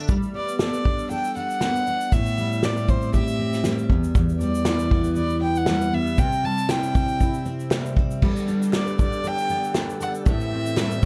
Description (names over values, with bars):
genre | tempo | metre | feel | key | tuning
acoustic pop | 118 BPM | 4/4 | swing 55% on 16ths | G major | A4 = 442 Hz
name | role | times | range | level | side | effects
picked steel-string acoustic guitar | accompaniment | 0.0-11.1 s | E2 to A4 | -26 LUFS | equal | double-tracked
unplugged drum kit | drums | 0.1-11.1 s | crash cymbal, kick drum, shaker, snare drum | -25 LUFS | equal | none
rich violin | melody | 0.4-11.1 s | C5 to A5 | -30 LUFS | equal | none
group handclap | percussion | 4.7-10.9 s | none | -42 LUFS | equal | none
tonewheel organ | sustained chords | 8.2-11.1 s | D3 to A4 | -37 LUFS | equal | overdrive, slow rotary speaker
room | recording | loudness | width
light reverb | dark, warm production | -23 LUFS | mono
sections
0.1-8.2 A section; 8.2-11.1 B section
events
none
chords
0.1 Gadd9; 2.1 Am7; 3.9 Em; 6.2 C; 8.2 Gadd9; 10.3 Am7